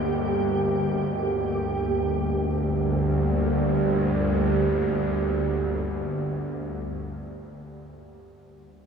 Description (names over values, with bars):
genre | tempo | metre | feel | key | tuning
ambient | free time | none | none | G minor | A4 = 440 Hz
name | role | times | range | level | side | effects
deep dark ambient pad | sustained chords | 0.0-6.7 s | G2 to Eb5 | -27 LUFS | right 2 dB | chorus, built-in reverb
bowed-like drone | drone | 0.0-6.5 s | G1 to D2 | -26 LUFS | equal | built-in reverb
flickering grainy texture | texture | 0.0-1.9 s | G4 | -33 LUFS | right 1 dB | built-in reverb
room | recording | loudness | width
wet cathedral reverb, RT60 6.8 s | small room ambience | -23 LUFS | side -6 dB against mid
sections
0.0-1.9 A section; 1.9-6.0 B section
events
none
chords
0.0 Eb/G; 1.9 Gm